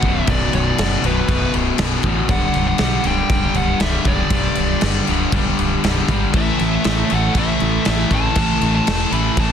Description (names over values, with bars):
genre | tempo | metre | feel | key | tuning
quiet-loud alternative rock | 119 BPM | 4/4 | straight | unclear | A4 = 440 Hz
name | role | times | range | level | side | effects
fuzz lead guitar | melody | 0.0-9.5 s | B4 to B5 | -24 LUFS | equal | distortion, slapback echo
crunchy overdriven guitar | riff | 0.0-9.5 s | B1 to A3 | -23 LUFS | left 13 dB | none
sludgy distorted guitar | riff | 0.0-9.5 s | B1 to A3 | -23 LUFS | right 13 dB | overdrive
modern bright fingered electric bass | bass | 0.0-9.5 s | B0 to B1 | -21 LUFS | equal | none
big rock drum kit | drums | 0.0-9.5 s | crash cymbal, kick drum, snare drum | -20 LUFS | left 1 dB | none
heavy high-gain guitar | riff | 6.3-9.5 s | A2 to A3 | -25 LUFS | left 2 dB | distortion
room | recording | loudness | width
little or no reverb | dense, heavily limited modern master | -15 LUFS | side -8 dB against mid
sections
0.0-9.5 A section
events
none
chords
0.0 Bm; 2.3 G/B; 6.3 A5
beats
| 0.29 0.79 1.30 1.80 | 2.31 2.81 3.31 3.82 | 4.32 4.83 5.33 5.83 | 6.34 6.84 7.35 7.85 | 8.36 8.86 9.37